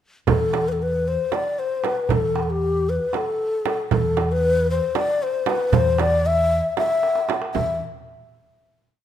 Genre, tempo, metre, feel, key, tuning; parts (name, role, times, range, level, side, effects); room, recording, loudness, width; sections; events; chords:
Turkish makam ensemble; 231 BPM (eighths); 7/8; straight; E makam ussak; A4 = 441 Hz
breathy mellow low ney; melody; 0.3-7.8 s; G4 to E5; -21 LUFS; left 3 dB
upright bass; bass; 0.3-7.8 s; E2; -25 LUFS; equal
darbuka; percussion; 0.3-7.8 s; -26 LUFS; right 4 dB
frame drum; percussion; 0.3-7.8 s; -27 LUFS; right 9 dB
light reverb; minimal, uncompressed stereo recording; -19 LUFS; side -10 dB against mid
0.3-7.5 A section; 7.5-9.0 final note
drum fill 7.0-7.5